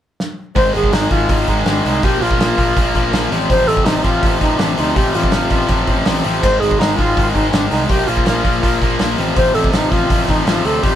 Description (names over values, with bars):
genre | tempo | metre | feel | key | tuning
punk rock | 163 BPM | 4/4 | straight | unclear | A4 = 438 Hz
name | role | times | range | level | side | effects
loose indie drum kit | drums | 0.2-10.9 s | crash cymbal, hi-hat, kick drum, snare drum | -19 LUFS | equal | none
bright alto flute | melody | 0.6-11.0 s | D4 to C5 | -18 LUFS | equal | none
distorted electric guitar | riff | 0.6-11.0 s | F2 to Bb3 | -20 LUFS | left 6 dB | overdrive
overdriven electric guitar | riff | 0.6-11.0 s | F2 to Bb3 | -22 LUFS | right 7 dB | none
fuzz picked electric bass | bass | 0.6-11.0 s | Ab1 to D2 | -22 LUFS | equal | overdrive
room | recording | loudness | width
light reverb | band playing live in one room | -13 LUFS | side -10 dB against mid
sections
0.6-11.0 A section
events
drum fill 0.2-0.6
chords
0.0 N.C.; 0.6 Ab5; 2.0 Bb5; 3.3 F/A; 6.4 Ab5; 7.9 Bb5; 9.2 F/A